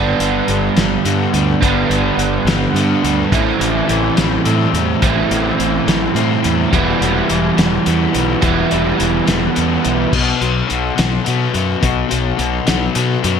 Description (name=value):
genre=indie rock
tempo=70 BPM (dotted quarters)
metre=6/8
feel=straight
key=unclear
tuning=A4 = 440 Hz
part: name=overdriven electric guitar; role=riff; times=0.0-10.1 s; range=G2 to E4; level=-17 LUFS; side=right 7 dB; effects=analog chorus, ping-pong delay
part: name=raw garage guitar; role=riff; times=0.0-13.4 s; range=G2 to C4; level=-18 LUFS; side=left 8 dB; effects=overdrive, wide subtle chorus
part: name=fuzz fingered electric bass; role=bass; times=0.0-13.4 s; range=E1 to B2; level=-20 LUFS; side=left 1 dB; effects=overdrive
part: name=cloth-damped thuddy drum kit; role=drums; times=0.2-13.4 s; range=crash cymbal, hi-hat, kick drum, snare drum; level=-20 LUFS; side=left 1 dB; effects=gated reverb
room=light reverb, small room ambience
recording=bright 1980s-style digital production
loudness=-13 LUFS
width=side -7 dB against mid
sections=0.0-10.1 A section; 10.1-13.4 A section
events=none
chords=0.0 G; 3.3 Am7; 6.7 Em; 10.1 B5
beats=0.77 | 1.62 2.47 | 3.32 4.17 | 5.02 5.87 | 6.72 7.57 | 8.43 9.28 | 10.13 10.98 | 11.83 12.68